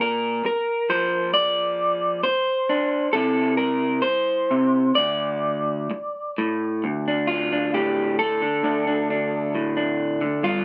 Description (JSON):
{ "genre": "folk, solo fingerstyle acoustic guitar", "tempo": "66 BPM", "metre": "4/4", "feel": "rubato", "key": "D minor", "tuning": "A4 = 440 Hz", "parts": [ { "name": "electric guitar through a small old amp", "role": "solo", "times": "0.0-10.6 s", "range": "D2 to D5", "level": "-23 LUFS", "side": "equal", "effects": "none" } ], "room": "moderate small room reverb, RT60 0.5 s", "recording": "none", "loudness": "-23 LUFS", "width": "mono", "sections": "0.0-6.8 A section; 6.8-10.6 B section", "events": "none", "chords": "0.0 Bbadd9; 3.1 C7; 5.0 D5" }